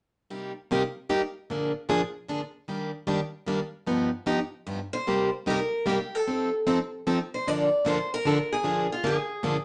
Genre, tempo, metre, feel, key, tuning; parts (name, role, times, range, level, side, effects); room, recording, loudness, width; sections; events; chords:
jazz; 151 BPM; 3/4; swing 63% on 8ths; C minor; A4 = 438 Hz
picked plugged-in steel-string acoustic guitar; accompaniment; 0.3-9.6 s; G2 to A4; -28 LUFS; equal
picked acoustic archtop guitar; melody; 4.9-9.6 s; F4 to D5; -30 LUFS; equal
wet studio reverb, RT60 0.6 s; nothing above 10.6 kHz; -28 LUFS; mono
0.3-5.1 A section; 5.1-9.6 B section
0.3 Cm7; 1.5 Bb7; 2.7 Ebmaj7; 3.9 Gaug7; 5.1 Cm7; 6.3 F7; 7.5 Bbmaj7; 8.7 Bb7